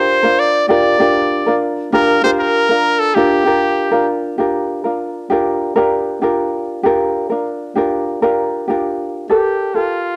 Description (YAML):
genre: acoustic pop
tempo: 98 BPM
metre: 4/4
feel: straight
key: G minor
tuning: A4 = 440 Hz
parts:
  - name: bright trumpet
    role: melody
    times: 0.0-4.1, 9.3-10.2 s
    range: F4 to D5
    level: -18 LUFS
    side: equal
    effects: cassette tape
  - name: ukulele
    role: accompaniment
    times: 0.0-10.2 s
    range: D4 to D5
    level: -18 LUFS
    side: equal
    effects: none
room: moderate spring reverb, RT60 1.7 s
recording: home recording on cassette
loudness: -16 LUFS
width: mono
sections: 0.0-4.4 A section; 4.4-9.3 B section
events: none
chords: 0.0 Gm7; 9.3 Gmadd9